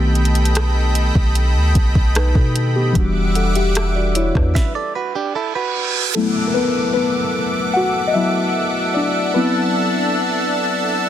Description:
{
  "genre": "contemporary R&B",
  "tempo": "75 BPM",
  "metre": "4/4",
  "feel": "straight",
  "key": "D major",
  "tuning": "A4 = 440 Hz",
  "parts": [
    { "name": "muted felt-like synth keys", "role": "accompaniment", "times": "0.0-11.1 s", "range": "D#3 to F#5", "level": "-20 LUFS", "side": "left 3 dB", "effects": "chorus" },
    { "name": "lush unison pad", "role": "sustained chords", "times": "0.0-11.1 s", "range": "G3 to D6", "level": "-22 LUFS", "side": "equal", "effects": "chorus" },
    { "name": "soft 808-style bass", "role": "bass", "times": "0.0-4.5 s", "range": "E1 to B2", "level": "-17 LUFS", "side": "equal", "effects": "none" },
    { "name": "smooth R&B drum kit", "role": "drums", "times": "0.2-4.7 s", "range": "hi-hat, kick drum, rim click, snare drum", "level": "-18 LUFS", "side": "equal", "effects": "none" },
    { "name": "direct-recorded clean electric guitar", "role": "arpeggios", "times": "4.6-6.1 s", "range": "D4 to E5", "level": "-24 LUFS", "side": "right 6 dB", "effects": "tape echo" },
    { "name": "reverse cymbal and downlifter", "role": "sound effects", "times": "5.3-11.1 s", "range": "none", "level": "-26 LUFS", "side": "right 3 dB", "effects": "none" }
  ],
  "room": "digital ambience",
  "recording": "dense, heavily limited modern master",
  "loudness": "-15 LUFS",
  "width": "side -11 dB against mid",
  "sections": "0.0-6.2 A section; 6.2-11.1 B section",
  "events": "stop 4.6-6.2; reverse cymbal 5.3-6.2; synth keys solo 6.2-11.1",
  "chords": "0.0 B7alt; 3.0 Em9; 6.2 D69; 9.4 D13"
}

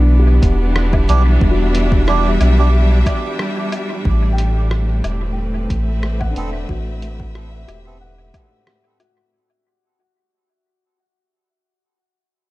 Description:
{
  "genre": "ambient dub",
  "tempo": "91 BPM",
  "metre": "4/4",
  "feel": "swing 54% on 16ths",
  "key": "unclear",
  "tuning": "A4 = 439 Hz",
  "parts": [
    { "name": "clear studio string section", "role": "sustained chords", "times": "0.0-9.3 s", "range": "A2 to E5", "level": "-22 LUFS", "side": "equal", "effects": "none" },
    { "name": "felt-muted upright piano", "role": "arpeggios", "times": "0.0-11.0 s", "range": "D4 to G5", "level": "-28 LUFS", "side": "left 3 dB", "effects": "dub echo" },
    { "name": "soft dub sub bass", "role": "bass", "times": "0.0-8.3 s", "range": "E1 to B1", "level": "-15 LUFS", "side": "equal", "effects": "none" },
    { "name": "electronic kick drum", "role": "drums", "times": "0.4-8.5 s", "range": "none", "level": "-18 LUFS", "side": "equal", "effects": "studio reverb" },
    { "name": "lo-fi sampler-style drum kit", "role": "drums", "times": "0.4-9.1 s", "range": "hi-hat, rim click, woodblock", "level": "-28 LUFS", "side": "equal", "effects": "studio reverb, dub echo" },
    { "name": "melodica", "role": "stabs", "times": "1.1-8.0 s", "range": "B3 to A4", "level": "-25 LUFS", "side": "right 5 dB", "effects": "dub echo" }
  ],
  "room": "small room ambience",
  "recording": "echo-heavy mix",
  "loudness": "-14 LUFS",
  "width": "side -18 dB against mid",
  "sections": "0.0-9.3 A section",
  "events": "fade-out 2.3-9.3",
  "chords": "0.0 Em7; 4.1 Amadd9"
}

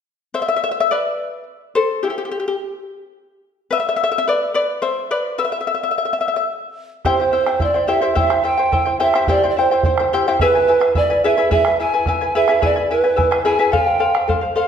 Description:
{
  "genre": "andean folk, Andean ensemble",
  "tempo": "72 BPM (dotted quarters)",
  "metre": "6/8",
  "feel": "straight",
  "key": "unclear",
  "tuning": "A4 = 441 Hz",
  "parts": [
    { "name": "charango", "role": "accompaniment", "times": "0.3-14.7 s", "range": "E4 to G#5", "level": "-18 LUFS", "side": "left 3 dB", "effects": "none" },
    { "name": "bombo", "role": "percussion", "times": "7.0-14.4 s", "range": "none", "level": "-23 LUFS", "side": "right 2 dB", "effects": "none" },
    { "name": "mellow polished pan flute", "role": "melody", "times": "7.1-14.7 s", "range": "B4 to G#5", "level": "-17 LUFS", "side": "right 4 dB", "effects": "none" }
  ],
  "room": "wet recital hall reverb, RT60 1.5 s",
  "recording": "none",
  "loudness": "-15 LUFS",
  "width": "side -8 dB against mid",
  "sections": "0.3-7.1 A section; 7.1-14.7 B section",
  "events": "charango solo 0.3-7.1",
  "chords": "0.3 Em7; 3.7 Bmadd11; 7.1 C; 10.4 E; 13.7 F"
}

